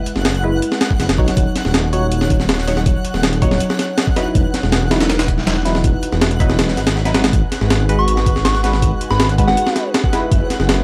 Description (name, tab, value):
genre	drum and bass, jungle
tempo	161 BPM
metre	4/4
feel	straight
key	unclear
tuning	A4 = 440 Hz
part	band-passed chord stab	stabs	0.0-10.8 s	F#3 to C#5	-24 LUFS	equal	phaser, cassette tape, dub echo
part	twinkling granular texture	texture	0.0-10.8 s	F#5 to F#6	-31 LUFS	equal	built-in reverb
part	breakbeat sampler-style drum kit	drums	0.1-10.8 s	hi-hat, kick drum, snare drum	-19 LUFS	equal	small room ambience
part	detuned saw bass	bass	0.2-10.8 s	D#1 to B1	-20 LUFS	equal	none
part	soft synth bell	melody	8.0-9.8 s	F#5 to C#6	-24 LUFS	equal	chorus, vintage 12-bit sampler grit, dub echo
room	little or no reverb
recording	dry, gritty hardware recording, vinyl crackle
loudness	-16 LUFS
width	mono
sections	0.0-10.8 A section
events	none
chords	0.0 F#9sus4; 1.4 D#m7; 4.4 Emaj9; 7.3 G#m7; 10.3 F#9sus4